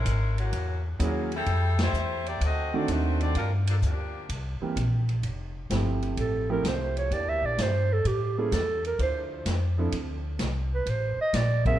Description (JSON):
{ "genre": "jazz, big band swing", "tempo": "128 BPM", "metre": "4/4", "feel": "swing 69% on 8ths", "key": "F major", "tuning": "A4 = 441 Hz", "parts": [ { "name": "clear saxophone section", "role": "melody", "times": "0.0-4.3 s", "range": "Fb3 to Eb5", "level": "-31 LUFS", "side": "left 2 dB", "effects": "none" }, { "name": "upright bass", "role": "bass", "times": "0.0-11.8 s", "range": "F1 to A2", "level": "-27 LUFS", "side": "equal", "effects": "none" }, { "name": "swinging big-band drum kit", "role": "drums", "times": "0.1-11.7 s", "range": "hi-hat, kick drum, ride cymbal, snare drum", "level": "-34 LUFS", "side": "equal", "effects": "none" }, { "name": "clear concert grand piano", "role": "accompaniment", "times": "1.0-11.8 s", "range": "Eb3 to A4", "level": "-31 LUFS", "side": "right 4 dB", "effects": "none" }, { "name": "breathy clarinet", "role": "melody", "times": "6.2-11.8 s", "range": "G4 to E5", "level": "-28 LUFS", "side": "right 3 dB", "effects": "none" }, { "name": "mellow saxophone section", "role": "sustained chords", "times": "6.6-11.8 s", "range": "E3 to C5", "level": "-39 LUFS", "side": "left 1 dB", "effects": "none" } ], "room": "light reverb", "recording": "dark, warm production", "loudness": "-25 LUFS", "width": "side -12 dB against mid", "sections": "0.0-5.2 A section; 5.2-11.8 B section", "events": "band accent 1.7; clarinet solo 5.2-11.8", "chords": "0.0 Gb9; 1.5 Fmaj9; 2.4 D7b9; 3.4 Gm7; 4.3 C7; 5.2 Fmaj9; 7.1 Em7b5; 8.1 A7b9; 9.0 Dm9; 10.9 Bbmaj9/A" }